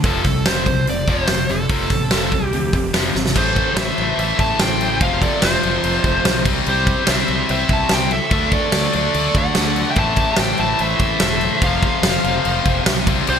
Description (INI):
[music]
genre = hard rock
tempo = 145 BPM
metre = 4/4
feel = straight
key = unclear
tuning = A4 = 440 Hz
[part]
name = distorted electric guitar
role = riff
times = 0.0-13.4 s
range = F2 to D4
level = -23 LUFS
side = left 10 dB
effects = overdrive
[part]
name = tight distorted guitar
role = riff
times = 0.0-13.4 s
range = F2 to D4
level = -25 LUFS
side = right 10 dB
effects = distortion
[part]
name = fuzz fingered electric bass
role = bass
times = 0.0-13.4 s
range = E1 to D2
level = -24 LUFS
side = equal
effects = overdrive
[part]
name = huge arena drum kit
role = drums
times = 0.0-13.4 s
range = crash cymbal, hi-hat, kick drum, snare drum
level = -19 LUFS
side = equal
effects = gated reverb
[part]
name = dark smooth lead guitar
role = melody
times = 0.1-13.4 s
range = A4 to A5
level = -21 LUFS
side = equal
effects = overdrive, digital delay
[part]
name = dark smooth lead guitar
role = second line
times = 3.4-13.4 s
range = F4 to E5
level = -27 LUFS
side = right 2 dB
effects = overdrive
[sound]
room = moderate lush hall reverb, RT60 1.8 s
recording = bright 1980s-style digital production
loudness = -15 LUFS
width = side -7 dB against mid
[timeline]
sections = 0.0-3.4 A section; 3.4-13.4 B section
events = drum fill 3.2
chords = 0.0 F; 3.4 Am; 5.0 F5; 6.5 C; 8.3 D; 10.0 Am; 11.6 F5